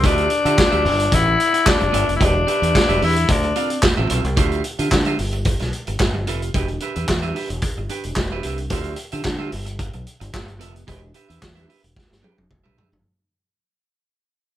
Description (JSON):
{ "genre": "disco", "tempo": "111 BPM", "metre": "4/4", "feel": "straight", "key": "unclear", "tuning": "A4 = 442 Hz", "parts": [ { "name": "raspy tenor saxophone", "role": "melody", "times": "0.0-3.8 s", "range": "D4 to E4", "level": "-18 LUFS", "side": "left 3 dB", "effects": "none" }, { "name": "electric guitar at the edge of break-up", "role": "accompaniment", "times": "0.0-12.9 s", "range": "B3 to G5", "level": "-27 LUFS", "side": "right 5 dB", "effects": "none" }, { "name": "fingered electric bass", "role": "bass", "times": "0.0-13.0 s", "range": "E1 to D3", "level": "-24 LUFS", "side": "equal", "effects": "none" }, { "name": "vintage drum kit", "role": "drums", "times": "0.0-13.0 s", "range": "handclaps, hi-hat, kick drum, snare drum, toms", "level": "-21 LUFS", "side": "equal", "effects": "none" } ], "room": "moderate studio ambience, RT60 0.5 s", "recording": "band playing live in one room", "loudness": "-17 LUFS", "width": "side -12 dB against mid", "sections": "0.0-4.4 A section; 4.4-13.0 B section", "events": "fade-out 4.4-13.0; drum fill 12.0-13.0", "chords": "0.0 Dm11; 0.8 G13; 2.2 Em7; 3.3 Dm9; 4.4 Dm11; 5.2 G13; 6.5 Em7; 8.7 Dm11; 9.5 G13; 10.9 Em7" }